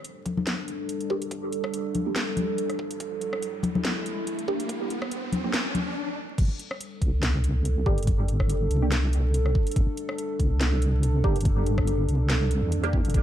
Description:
deep dubstep; 142 BPM; 4/4; swing 55% on 16ths, half-time; G dorian; A4 = 443 Hz
dark analog pad; sustained chords; 0.4-13.2 s; G3 to Bb4; -32 LUFS; right 1 dB; chorus, phaser
garage drum kit; drums; 0.0-13.2 s; crash cymbal, hi-hat, rim click, snare drum; -32 LUFS; equal; studio reverb
riser; sound effects; 0.0-6.0 s; -37 LUFS; equal
electronic kick drum; drums; 0.3-13.2 s; -25 LUFS; equal; high-pass filter on kick, studio reverb
congas; percussion; 0.3-5.8 s; -30 LUFS; left 3 dB
filtered dub chord stab; stabs; 1.1-13.0 s; Bb3 to G4; -33 LUFS; right 3 dB; phaser, analog chorus, dub echo
deep soft wobble bass; bass; 6.4-13.2 s; F1 to E2; -24 LUFS; equal; chorus
light reverb; dark, warm production, vinyl crackle; -24 LUFS; side -11 dB against mid
0.0-6.4 A section; 6.4-13.2 B section
build-up 0.0-6.4; riser 0.0-6.0; filter sweep on synth stab 0.0-6.4; break 6.0-6.4; drop 6.4-13.2
0.0 G5
0.04 0.47 0.89 | 1.31 1.73 2.16 2.58 | 3.00 3.42 3.85 4.27 | 4.69 5.12 5.54 5.96 | 6.38 6.80 7.23 7.65 | 8.07 8.49 8.92 9.34 | 9.76 10.19 10.61 11.03 | 11.45 11.88 12.30 12.72 | 13.14

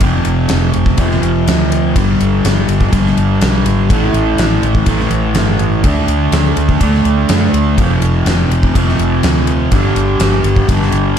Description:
rock, shoegaze and dream pop; 124 BPM; 4/4; straight; A4 = 440 Hz
fuzz guitar; riff; 0.0-11.2 s; F2 to D4; -14 LUFS; right 1 dB; distortion, lush chorus
vintage muted fingered electric bass; bass; 0.0-11.2 s; F1 to F#2; -16 LUFS; equal
gated 80s drum kit; drums; 0.0-11.0 s; kick drum, ride cymbal, snare drum; -17 LUFS; equal
small room ambience; dark, warm production; -10 LUFS; side -8 dB against mid
0.0-11.2 A section
0.0 F5; 2.0 G5; 3.9 A5; 5.8 D5; 7.8 F5; 9.7 G5
| 0.01 0.50 0.98 1.47 | 1.96 2.44 2.93 3.41 | 3.90 4.38 4.87 5.36 | 5.84 6.33 6.81 7.30 | 7.78 8.27 8.75 9.24 | 9.72 10.21 10.69 11.18

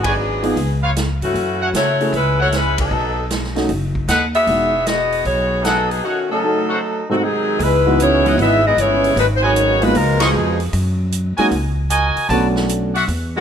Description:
jazz, big band swing; 153 BPM; 4/4; swing 66% on 8ths; E major, C# minor from 7.6 s; A4 = 439 Hz
bright saxophone section; melody; 0.0-10.6, 13.4 s; D3 to E5; -17 LUFS; left 1 dB
clear trumpet section; stabs; 0.0-13.0 s; D#4 to C#6; -21 LUFS; equal
upright bass; bass; 0.0-13.4 s; E1 to C#3; -20 LUFS; equal
swinging big-band drum kit; drums; 0.0-13.2 s; hi-hat, kick drum, ride cymbal, snare drum; -26 LUFS; right 2 dB
warm grand piano; accompaniment; 0.4-12.9 s; G#2 to A4; -20 LUFS; right 1 dB
clear trombone section; second line; 6.3-10.6, 13.4 s; B2 to E4; -21 LUFS; right 1 dB
light reverb; -15 LUFS; side -8 dB against mid
0.0-7.6 A section; 7.6-13.4 B section
band accent 0.0, 2.7, 10.1
0.0 G#m7b5; 0.6 C#7; 1.3 F#m7; 2.9 B7; 4.5 Emaj9; 6.0 D#m7b5; 6.8 G#7b9; 7.6 C#m11; 9.2 G#m7; 9.9 C#13; 10.7 F#69; 12.3 Bm7
0.18 0.57 0.96 | 1.35 1.74 2.13 2.52 | 2.91 3.30 3.69 4.08 | 4.48 4.87 5.26 5.65 | 6.04 6.43 6.82 7.21 | 7.60 8.00 8.39 8.78 | 9.17 9.56 9.95 10.34 | 10.73 11.12 11.51 11.91 | 12.30 12.69 13.08

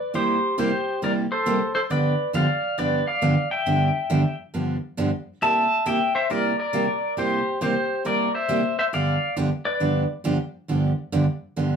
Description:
country; 137 BPM; 4/4; swing 65% on 8ths; G mixolydian; A4 = 440 Hz
pedal steel guitar; melody; 0.0-10.1 s; G4 to A5; -23 LUFS; left 1 dB
picked steel-string acoustic guitar; accompaniment; 0.1-11.8 s; G2 to G4; -23 LUFS; right 2 dB
wet studio ambience, RT60 0.5 s; band playing live in one room; -21 LUFS; side -6 dB against mid
0.0-11.8 A section
0.1 C7; 1.9 G7; 5.4 C7; 8.9 G7
| 0.14 0.58 1.02 1.46 | 1.90 2.34 2.78 3.22 | 3.66 4.10 4.54 4.98 | 5.42 5.86 6.30 6.74 | 7.17 7.61 8.05 8.49 | 8.93 9.37 9.81 10.25 | 10.69 11.13 11.57

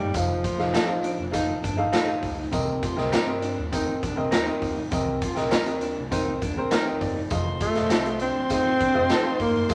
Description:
uptempo 1960s-style soul; 100 BPM; 4/4; straight; F mixolydian; A4 = 440 Hz
mellow alto saxophone; melody; 0.0-1.9, 7.6-9.7 s; F3 to C4; -27 LUFS; equal
electric guitar through a small old amp; riff; 0.0-9.7 s; C4 to F4; -36 LUFS; equal; tremolo
upright bass; bass; 0.0-9.7 s; F1 to G2; -36 LUFS; equal
bright upright piano; accompaniment; 0.1-9.7 s; C3 to A5; -31 LUFS; equal
raw garage drum kit; drums; 0.1-9.7 s; hi-hat, kick drum, snare drum; -30 LUFS; equal
tambourine; percussion; 0.2-9.7 s; -45 LUFS; equal
electric guitar through a small old amp; stabs; 0.7-9.2 s; C4 to Bb4; -30 LUFS; equal
rich studio violin section; second line; 7.3-9.7 s; C5 to C6; -35 LUFS; equal
wet studio reverb, RT60 0.6 s; -25 LUFS; mono
0.0-9.7 A section
upright piano fill 1.3-2.5, 6.4-7.3
0.0 F7; 2.5 Cm7; 7.3 F7
| 0.14 0.74 1.33 1.93 | 2.53 3.13 3.72 4.32 | 4.92 5.52 6.12 6.71 | 7.31 7.91 8.51 9.10 | 9.70

